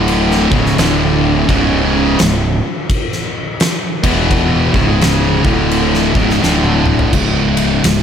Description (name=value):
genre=stoner and doom metal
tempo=85 BPM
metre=4/4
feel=swing 62% on 8ths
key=unclear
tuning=A4 = 440 Hz
part: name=distorted electric guitar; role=riff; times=0.0-7.1 s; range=C#2 to E3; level=-18 LUFS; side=equal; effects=overdrive
part: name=fuzz guitar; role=riff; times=0.0-8.0 s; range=C#2 to E3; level=-18 LUFS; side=left 9 dB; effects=distortion
part: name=thick fuzz guitar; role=riff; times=0.0-8.0 s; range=C#2 to E3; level=-17 LUFS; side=right 8 dB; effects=distortion
part: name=fuzz fingered electric bass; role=bass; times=0.0-8.0 s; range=C#1 to E1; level=-18 LUFS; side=equal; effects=overdrive
part: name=oversized low-tuned drum kit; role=drums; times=0.1-8.0 s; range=crash cymbal, kick drum, ride cymbal, snare drum, toms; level=-16 LUFS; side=equal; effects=none
room=light reverb, small room ambience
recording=none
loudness=-11 LUFS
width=side -8 dB against mid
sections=0.0-7.1 A section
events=drum fill 6.4-7.1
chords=0.4 C#5; 0.8 D5; 1.5 C#5; 4.0 E5; 4.7 C#5; 5.4 D5; 6.1 C#5; 6.4 D5; 7.1 C#5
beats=0.08 0.78 | 1.49 2.19 2.90 3.60 | 4.31 5.01 5.72 6.43 | 7.13 7.84